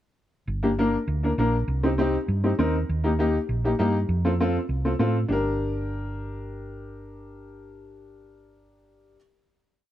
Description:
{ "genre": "latin", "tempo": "199 BPM", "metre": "4/4", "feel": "straight", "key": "G minor", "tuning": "A4 = 440 Hz", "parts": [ { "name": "hollow-body short-scale fingered electric bass", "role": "bass", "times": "0.5-9.2 s", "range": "G1 to A2", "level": "-26 LUFS", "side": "right 1 dB", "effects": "none" }, { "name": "warm upright piano", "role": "accompaniment", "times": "0.6-9.2 s", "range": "Bb3 to Bb4", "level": "-25 LUFS", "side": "left 1 dB", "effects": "none" } ], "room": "light reverb", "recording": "none", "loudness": "-22 LUFS", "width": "side -12 dB against mid", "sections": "0.5-5.3 groove; 5.3-7.7 final chord", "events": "none", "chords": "0.5 Gm; 1.7 Cm; 2.9 Eb; 4.1 F; 5.3 Gm", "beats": "| 0.48 0.78 1.08 1.38 | 1.68 1.98 2.28 2.58 | 2.89 3.19 3.49 3.79 | 4.09 4.39 4.69 5.00 | 5.30 5.60 5.90 6.20 | 6.50 6.80 7.10 7.40" }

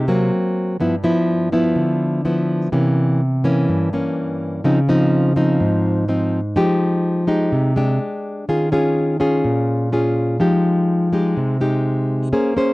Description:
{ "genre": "bossa nova", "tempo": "125 BPM", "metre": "4/4", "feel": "straight", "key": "F minor", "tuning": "A4 = 440 Hz", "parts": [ { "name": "nylon-string guitar", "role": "solo", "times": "0.0-12.7 s", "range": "G2 to C5", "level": "-16 LUFS", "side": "equal", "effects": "none" } ], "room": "little or no reverb", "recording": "dry, close 1970s-style studio recording", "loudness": "-16 LUFS", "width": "side -20 dB against mid", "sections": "0.0-12.7 A section", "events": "none", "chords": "0.3 Gb; 0.8 G6; 2.7 C7b9; 4.6 Dbmaj9; 6.6 Fm9; 8.0 G5; 8.5 Eb9sus4; 10.4 Fm9", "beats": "0.33 | 0.81 1.29 1.77 2.25 | 2.73 3.21 3.69 4.17 | 4.64 5.12 5.60 6.08 | 6.56 7.04 7.53 8.01 | 8.48 8.96 9.45 9.93 | 10.41 10.89 11.37 11.85 | 12.33" }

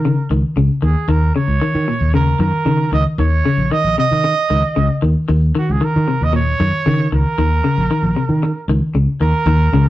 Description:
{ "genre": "afrobeat", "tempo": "115 BPM", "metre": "4/4", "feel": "straight", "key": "unclear", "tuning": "A4 = 440 Hz", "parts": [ { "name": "clear trumpet", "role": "melody", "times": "0.0-9.8 s", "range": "Gb4 to Eb5", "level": "-20 LUFS", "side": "right 5 dB", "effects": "none" }, { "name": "fingered electric bass", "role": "bass", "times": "0.0-9.8 s", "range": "Bb1 to Eb3", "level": "-16 LUFS", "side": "equal", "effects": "none" }, { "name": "clean electric guitar", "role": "arpeggios", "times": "0.1-9.9 s", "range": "Bb2 to Eb3", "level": "-18 LUFS", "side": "left 2 dB", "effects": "none" } ], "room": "wet studio reverb, RT60 0.6 s", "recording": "rough rehearsal-room recording, tube saturation", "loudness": "-14 LUFS", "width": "side -15 dB against mid", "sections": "0.0-9.5 A section", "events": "none", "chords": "0.0 Eb7(no3)", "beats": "0.05 0.57 | 1.09 1.62 2.14 2.67 | 3.19 3.71 4.24 4.76 | 5.28 5.81 6.33 6.85 | 7.38 7.90 8.42 8.94 | 9.47" }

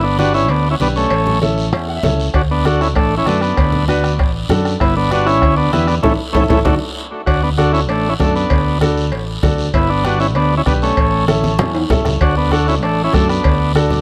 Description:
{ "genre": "latin, cumbia", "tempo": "195 BPM", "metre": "4/4", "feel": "straight", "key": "D major", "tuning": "A4 = 440 Hz", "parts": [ { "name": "combo organ", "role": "melody", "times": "0.0-13.7 s", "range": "A3 to F#4", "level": "-20 LUFS", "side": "equal", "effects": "tape echo" }, { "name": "fingered electric bass", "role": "bass", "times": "0.0-14.0 s", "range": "G1 to F#2", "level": "-20 LUFS", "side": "equal", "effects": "none" }, { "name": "bright upright piano", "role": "accompaniment", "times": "0.2-14.0 s", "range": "C#4 to F#5", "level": "-24 LUFS", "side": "equal", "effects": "none" }, { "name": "congas", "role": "percussion", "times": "0.2-14.0 s", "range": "none", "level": "-25 LUFS", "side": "equal", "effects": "none" }, { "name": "guiro", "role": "percussion", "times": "0.2-14.0 s", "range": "none", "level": "-32 LUFS", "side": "equal", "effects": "none" }, { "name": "cowbell and timbales", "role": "percussion", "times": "0.5-13.6 s", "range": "none", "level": "-27 LUFS", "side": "equal", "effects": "none" }, { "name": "bombo", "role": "percussion", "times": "2.3-13.9 s", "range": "none", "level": "-21 LUFS", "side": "equal", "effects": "none" } ], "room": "light reverb", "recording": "none", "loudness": "-15 LUFS", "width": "mono", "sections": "0.0-7.3 A section; 7.3-14.0 A section", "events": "upright piano fill 1.7-2.3, 13.8; drum fill 6.0-7.3, 11.3-12.2; band accent 6.0-7.3", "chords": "0.0 G; 1.1 A; 2.3 D; 4.8 G; 6.0 A; 6.7 D; 9.7 G; 11.0 A; 12.2 D", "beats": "0.19 0.49 0.80 | 1.11 1.42 1.73 2.04 | 2.34 2.65 2.96 3.27 | 3.58 3.88 4.19 4.50 | 4.81 5.12 5.42 5.73 | 6.04 6.35 6.66 6.96 | 7.27 7.58 7.89 8.20 | 8.51 8.81 9.12 9.43 | 9.74 10.05 10.36 10.66 | 10.97 11.28 11.59 11.90 | 12.21 12.52 12.83 13.14 | 13.45 13.75" }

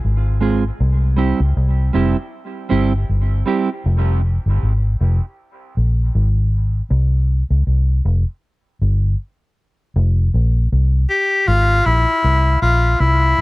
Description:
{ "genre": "dub reggae", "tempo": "79 BPM", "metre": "4/4", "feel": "swing 56% on 16ths", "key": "F harmonic minor", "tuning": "A4 = 439 Hz", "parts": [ { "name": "vintage muted fingered electric bass", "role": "bass", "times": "0.0-13.4 s", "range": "F1 to Db2", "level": "-15 LUFS", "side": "equal", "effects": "none" }, { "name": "mellow electric guitar", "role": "accompaniment", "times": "0.4-3.7 s", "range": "G3 to Ab4", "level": "-21 LUFS", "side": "right 4 dB", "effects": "dub echo" }, { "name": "clear tenor saxophone", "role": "melody", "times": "11.1-13.4 s", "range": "E4 to G4", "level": "-15 LUFS", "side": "left 2 dB", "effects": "dub echo" } ], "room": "small room reverb", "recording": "none", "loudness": "-15 LUFS", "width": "side -20 dB against mid", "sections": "0.0-9.9 A section; 9.9-13.4 B section", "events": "stop 9.2-9.9", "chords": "0.0 Fm; 0.8 C; 3.8 Fm; 6.9 C5; 9.9 Fm", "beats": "0.03 | 0.79 1.55 2.31 3.08 | 3.84 4.61 5.37 6.13 | 6.89 7.66 8.42 9.18 | 9.94 10.71 11.47 12.23 | 12.99" }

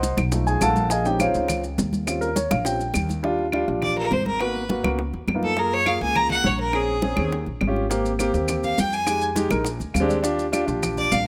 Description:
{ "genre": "Afro-Cuban jazz", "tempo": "206 BPM", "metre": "4/4", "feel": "straight", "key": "Eb major from 3.2 s", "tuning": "A4 = 440 Hz", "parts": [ { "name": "warm concert grand piano", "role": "accompaniment", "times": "0.0-11.1 s", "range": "E#3 to C6", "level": "-26 LUFS", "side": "equal", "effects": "none" }, { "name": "upright bass", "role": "bass", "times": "0.0-11.3 s", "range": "Ab1 to Gb2", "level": "-30 LUFS", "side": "equal", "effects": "none" }, { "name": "bongos", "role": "percussion", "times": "0.0-11.3 s", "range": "none", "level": "-35 LUFS", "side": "equal", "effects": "none" }, { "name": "congas", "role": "percussion", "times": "0.0-11.3 s", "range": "none", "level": "-31 LUFS", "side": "equal", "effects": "none" }, { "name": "maracas", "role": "percussion", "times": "0.0-3.2, 7.9-11.3 s", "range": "none", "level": "-36 LUFS", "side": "equal", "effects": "none" }, { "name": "claves", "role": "percussion", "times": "0.2-11.0 s", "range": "none", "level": "-35 LUFS", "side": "equal", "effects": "none" }, { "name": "bright fiddle", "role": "melody", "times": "3.8-11.3 s", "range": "Ab4 to Bb5", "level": "-26 LUFS", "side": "equal", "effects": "none" } ], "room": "light reverb, small room reverb", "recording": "rough home demo mix", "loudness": "-23 LUFS", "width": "mono", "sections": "0.0-3.2 A section; 3.2-11.3 A section", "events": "grand piano solo 0.0-3.2; fiddle solo 3.2-11.3; grand piano fill 9.8-10.2", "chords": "0.3 B7#11; 0.9 Bbm11; 2.1 Eb13; 3.2 Ebmaj7; 4.4 Abm9; 5.0 Db13; 5.6 Gbmaj9; 6.7 Bbm7; 7.3 Eb7; 7.9 Abmaj7; 9.1 Fm7; 9.7 Bb13; 10.2 Ebmaj7", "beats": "0.03 0.33 0.62 | 0.91 1.20 1.49 1.79 | 2.08 2.37 2.66 2.95 | 3.24 3.54 3.83 4.12 | 4.41 4.70 4.99 5.28 | 5.58 5.87 6.16 6.45 | 6.74 7.03 7.32 7.62 | 7.91 8.20 8.49 8.78 | 9.07 9.37 9.66 9.95 | 10.24 10.53 10.82 11.12" }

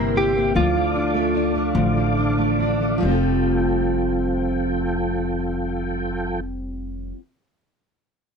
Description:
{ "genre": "six-eight pop ballad", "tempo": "45-53 BPM (dotted quarters)", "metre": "6/8", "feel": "straight", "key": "F major", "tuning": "A4 = 441 Hz", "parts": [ { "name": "direct-recorded clean electric guitar", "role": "melody", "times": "0.0-2.1 s", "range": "F4 to Bb4", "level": "-22 LUFS", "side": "right 2 dB", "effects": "analog chorus" }, { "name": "fingerpicked plugged-in steel-string acoustic guitar", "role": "accompaniment", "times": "0.0-7.2 s", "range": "C3 to A4", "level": "-23 LUFS", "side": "right 2 dB", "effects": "double-tracked left and right" }, { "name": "tonewheel organ", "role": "sustained chords", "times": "0.0-6.4 s", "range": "F3 to D6", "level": "-27 LUFS", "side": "equal", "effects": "chorus vibrato, slow rotary speaker" }, { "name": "fingerpicked steel-string acoustic guitar", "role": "arpeggios", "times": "0.0-7.2 s", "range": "E3 to G4", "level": "-31 LUFS", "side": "left 13 dB", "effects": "none" }, { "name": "upright bass", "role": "bass", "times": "0.0-7.1 s", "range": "F1 to D2", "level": "-25 LUFS", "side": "equal", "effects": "none" } ], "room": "light reverb", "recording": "dry, close 1970s-style studio recording", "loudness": "-19 LUFS", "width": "side -5 dB against mid", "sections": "0.0-3.0 A section; 3.0-5.6 B section", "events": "slowing down 0.0-3.0", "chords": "0.0 C7; 0.6 Dm; 3.0 Fadd9", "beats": "| 0.55 1.75 | 3.02 4.33" }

